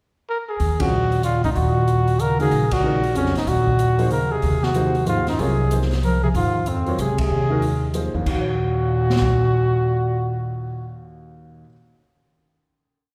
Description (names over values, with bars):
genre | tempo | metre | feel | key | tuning
modal jazz | 188 BPM | 3/4 | swing 63% on 8ths | Eb dorian | A4 = 443 Hz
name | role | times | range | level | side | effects
breathy trumpet | melody | 0.3-10.9 s | C4 to Bb4 | -25 LUFS | equal | none
upright bass | bass | 0.6-11.6 s | Bb1 to Fb2 | -28 LUFS | equal | none
open jazz drum kit | drums | 0.6-9.3 s | crash cymbal, hi-hat, kick drum, ride cymbal, snare drum | -32 LUFS | equal | none
breathy bass clarinet | second line | 0.8-10.9 s | F2 to F3 | -24 LUFS | equal | none
warm upright piano | accompaniment | 0.8-11.7 s | Eb2 to F5 | -31 LUFS | equal | none
room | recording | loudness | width
wet scoring stage reverb, RT60 1.7 s | heard from further back in the room | -20 LUFS | mono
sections
0.0-0.6 pickup bar; 0.6-8.3 A section; 8.3-10.2 final chord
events
band accent 0.8, 2.7, 7.1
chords
0.0 N.C.; 0.6 Ebm7; 4.4 Fm; 8.3 Ebm9